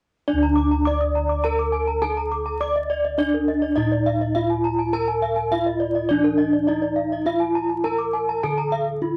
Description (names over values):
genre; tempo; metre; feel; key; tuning
Balinese gamelan; 103 BPM; 4/4; straight; D pelog; A4 = 440 Hz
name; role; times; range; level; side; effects
gamelan-type bronze metallophone; melody; 0.3-9.2 s; D4 to D5; -24 LUFS; equal; none
gamelan-type bronze metallophone; arpeggios; 0.3-8.9 s; D5 to D6; -30 LUFS; equal; none
gamelan-type bossed gongs; bass; 0.3-9.2 s; D2 to D5; -30 LUFS; equal; none
gamelan-type bronze metallophone; arpeggios; 0.4-8.7 s; Bb4-40c to Eb6; -30 LUFS; equal; none
room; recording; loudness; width
moderate studio ambience, RT60 0.5 s; vinyl crackle; -22 LUFS; mono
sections
0.3-9.2 A section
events
none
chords
none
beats
| 0.28 0.86 1.44 2.02 | 2.61 3.19 3.77 4.35 | 4.94 5.52 6.10 6.68 | 7.27 7.85 8.43 9.01